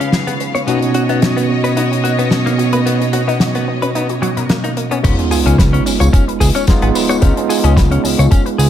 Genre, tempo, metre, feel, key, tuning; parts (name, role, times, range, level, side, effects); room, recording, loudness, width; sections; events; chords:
nu-disco, nu disco; 110 BPM; 4/4; swing 54% on 16ths; Db mixolydian; A4 = 441 Hz
overdriven tine electric piano; accompaniment; 0.0-8.7 s; Cb3 to Gb4; -18 LUFS; right 1 dB; auto-pan, sidechain pumping, analog delay
bright symphonic string section; sustained chords; 0.0-5.0 s; Cb3 to F5; -20 LUFS; right 2 dB; sidechain pumping
analog pluck; arpeggios; 0.0-8.7 s; Bb3 to Cb5; -23 LUFS; left 2 dB; chorus, sidechain pumping, analog delay
direct-recorded clean electric guitar; riff; 0.0-8.7 s; Cb3 to Db5; -22 LUFS; left 2 dB; wide subtle chorus, low-pass filter, analog delay
damped 70s drum kit; drums; 0.0-8.7 s; crash cymbal, hi-hat, snare drum, tambourine; -21 LUFS; left 2 dB
fat analog bass; bass; 5.0-8.7 s; Ab1 to Db2; -13 LUFS; equal
electronic kick drum; drums; 5.0-8.4 s; -12 LUFS; equal
sub drop; sound effects; 5.1-7.2 s; -23 LUFS; equal
moderate plate reverb, RT60 1.6 s, small room ambience; dreamy mix soaked in reverb; -12 LUFS; side -10 dB against mid
0.0-5.0 A section; 5.0-8.7 B section
filter sweep on synth arpeggio sound 0.0-5.0; drop 5.0-8.7; impact 5.0-7.2
0.0 Db7; 0.7 Cbmaj9; 5.0 Db7